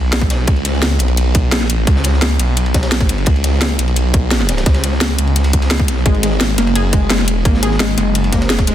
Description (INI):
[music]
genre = dark technical drum and bass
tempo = 172 BPM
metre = 4/4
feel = straight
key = unclear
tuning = A4 = 440 Hz
[part]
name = snarling distorted saw bass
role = bass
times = 0.0-8.7 s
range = F#1 to C#2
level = -15 LUFS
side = equal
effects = distortion, tube saturation
[part]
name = crunchy breakbeat drum kit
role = drums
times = 0.1-8.7 s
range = ride cymbal, snare drum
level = -27 LUFS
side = equal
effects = high-pass filter on cymbals, high-pass filter on snare, high-pass filter on room
[part]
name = drum and bass drum kit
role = drums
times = 0.1-8.7 s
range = hi-hat, snare drum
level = -19 LUFS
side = equal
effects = overdrive
[part]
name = electronic kick drum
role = drums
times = 0.2-8.7 s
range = none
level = -15 LUFS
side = equal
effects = overdrive
[part]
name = wide unison pluck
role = arpeggios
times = 6.1-8.7 s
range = G#3 to G#4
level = -18 LUFS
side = left 2 dB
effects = sidechain pumping, dub echo
[sound]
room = light reverb, studio reverb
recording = dense, heavily limited modern master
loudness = -12 LUFS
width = side -11 dB against mid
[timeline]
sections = 0.0-8.7 A section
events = none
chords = 0.5 Bsus2; 6.1 G#sus2